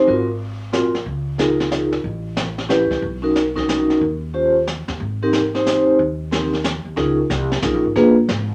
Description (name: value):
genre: jazz, small-group swing and bop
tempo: 183 BPM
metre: 3/4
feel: swing 64% on 8ths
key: Ab major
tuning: A4 = 442 Hz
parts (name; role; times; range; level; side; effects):
- vibraphone with medium mallets; accompaniment; 0.0-8.2 s; Bb3 to C5; -19 LUFS; equal; none
- upright bass; bass; 0.1-8.5 s; Ab1 to Eb2; -29 LUFS; equal; none
- jazz brush drum kit; drums; 0.1-8.5 s; brushed snare drum, hi-hat, kick drum, snare drum; -27 LUFS; equal; none
room: moderate studio reverb, RT60 0.5 s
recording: none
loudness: -19 LUFS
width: mono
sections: 0.0-7.0 A section; 7.0-8.5 B section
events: none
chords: 0.1 Ab13; 1.1 Db69; 2.0 A9; 3.0 Bmaj9; 4.0 Eb13; 5.0 Abmaj7; 7.0 Db69; 8.0 Bb7b9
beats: | 0.08 0.41 0.73 | 1.06 1.39 1.72 | 2.05 2.38 2.70 | 3.03 3.36 3.69 | 4.02 4.35 4.67 | 5.00 5.33 5.66 | 5.99 6.32 6.64 | 6.97 7.30 7.63 | 7.96 8.29